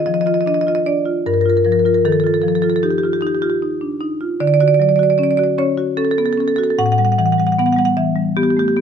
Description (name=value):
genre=classical, contemporary piece for solo marimba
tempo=76 BPM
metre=3/4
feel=straight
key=D major from 4.4 s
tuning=A4 = 439 Hz
part: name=marimba with medium hard mallets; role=solo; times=0.0-8.8 s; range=G2 to F#5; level=-14 LUFS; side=equal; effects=none
room=light reverb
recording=close, detailed microphones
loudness=-14 LUFS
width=side -7 dB against mid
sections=0.0-8.8 A section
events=none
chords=0.0 D#sus2; 1.3 Gm7; 2.1 D#add9; 4.4 Dmaj7; 6.8 Asus2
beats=0.48 1.27 | 2.06 2.84 3.62 | 4.40 5.18 5.97 | 6.78 7.56 8.35